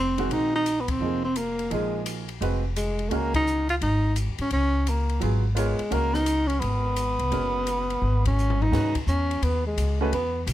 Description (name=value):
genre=modal jazz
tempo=171 BPM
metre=4/4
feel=swing 65% on 8ths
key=unclear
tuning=A4 = 440 Hz
part: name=breathy tenor saxophone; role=melody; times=0.0-10.5 s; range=Ab3 to F4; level=-26 LUFS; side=equal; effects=none
part: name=upright bass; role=bass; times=0.0-10.5 s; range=F1 to Ab2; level=-26 LUFS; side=equal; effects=none
part: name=clear baby grand piano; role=accompaniment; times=0.2-10.1 s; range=Eb3 to Db5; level=-31 LUFS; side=right 4 dB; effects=none
part: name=open jazz drum kit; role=drums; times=0.2-10.5 s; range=crash cymbal, hi-hat, kick drum, ride cymbal, snare drum, toms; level=-35 LUFS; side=left 3 dB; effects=none
room=little or no reverb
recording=close, detailed microphones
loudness=-22 LUFS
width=side -13 dB against mid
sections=0.0-8.7 A section; 8.7-10.5 B section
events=band accent 0.8, 3.3, 8.2; drum fill 8.0-8.7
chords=0.0 Bb9sus4; 3.1 Db7sus4; 8.7 C#m11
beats=| 0.30 0.65 1.00 1.35 | 1.71 2.06 2.41 2.76 | 3.11 3.46 3.81 4.16 | 4.51 4.86 5.21 5.56 | 5.91 6.26 6.62 6.97 | 7.32 7.67 8.02 8.37 | 8.72 9.07 9.42 9.77 | 10.12 10.47